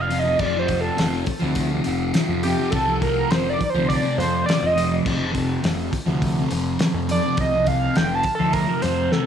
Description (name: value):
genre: psychedelic rock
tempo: 103 BPM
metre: 4/4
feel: straight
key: F mixolydian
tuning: A4 = 440 Hz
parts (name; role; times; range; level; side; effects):
- overdriven synth lead; melody; 0.0-9.3 s; G4 to A5; -23 LUFS; right 2 dB; distortion, chorus, analog delay
- fuzz guitar; riff; 0.0-9.3 s; F2 to F3; -23 LUFS; left 1 dB; distortion, phaser
- growling picked electric bass; bass; 0.0-9.1 s; F1 to F2; -26 LUFS; equal; overdrive
- cloth-damped thuddy drum kit; drums; 0.1-9.3 s; crash cymbal, hi-hat, kick drum, snare drum; -26 LUFS; left 1 dB; none
room: small room reverb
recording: studio reverb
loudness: -19 LUFS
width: side -8 dB against mid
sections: 0.0-9.3 A section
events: analog synth lead solo 0.0-9.3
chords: 0.0 F5